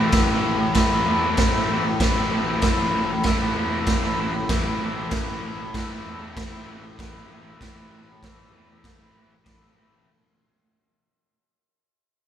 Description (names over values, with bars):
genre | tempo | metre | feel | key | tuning
garage rock duo or trio | 96 BPM | 4/4 | straight | A minor | A4 = 440 Hz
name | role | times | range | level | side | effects
raw garage guitar | riff | 0.0-10.1 s | A2 to E4 | -24 LUFS | left 1 dB | overdrive, spring reverb
fuzz picked electric bass | bass | 0.0-10.1 s | A1 to E2 | -32 LUFS | left 1 dB | overdrive
raw garage drum kit | drums | 0.1-9.6 s | crash cymbal, kick drum, snare drum | -23 LUFS | right 1 dB | none
room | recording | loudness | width
light reverb | band playing live in one room | -20 LUFS | side -10 dB against mid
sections
0.0-10.1 A section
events
fade-out 0.0-10.1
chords
0.0 Am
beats
| 0.12 0.75 1.37 2.00 | 2.62 3.25 3.87 4.49 | 5.12 5.74 6.36 6.98 | 7.60 8.22 8.84 9.46